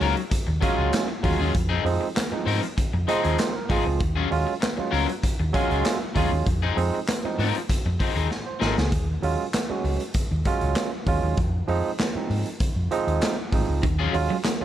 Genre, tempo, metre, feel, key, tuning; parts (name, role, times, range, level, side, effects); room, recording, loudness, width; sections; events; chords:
funk; 98 BPM; 4/4; straight; Eb dorian; A4 = 441 Hz
electric guitar at the edge of break-up; accompaniment; 0.0-8.8, 13.8-14.6 s; F3 to Bb4; -28 LUFS; left 8 dB; lush chorus, plate reverb
barky tine electric piano; stabs; 0.0-14.6 s; F3 to Eb5; -27 LUFS; right 5 dB; overdrive, plate reverb
hollow-body short-scale fingered electric bass; bass; 0.0-14.6 s; Ab1 to Ab2; -25 LUFS; equal
raw garage drum kit; drums; 0.0-14.6 s; handclaps, hi-hat, kick drum, snare drum; -26 LUFS; equal
semi-hollow electric guitar; riff; 13.8-14.5 s; Eb3 to Ab3; -30 LUFS; right 5 dB
light reverb; -22 LUFS; side -11 dB against mid
0.0-14.6 A section
tine electric piano fill 2.8-4.0; drum fill 8.3-8.9
0.0 Ebm11; 1.5 Fm7; 4.0 Ebm11; 6.5 Fm7; 8.9 Ebm11; 11.4 Fm7; 13.8 Ebm11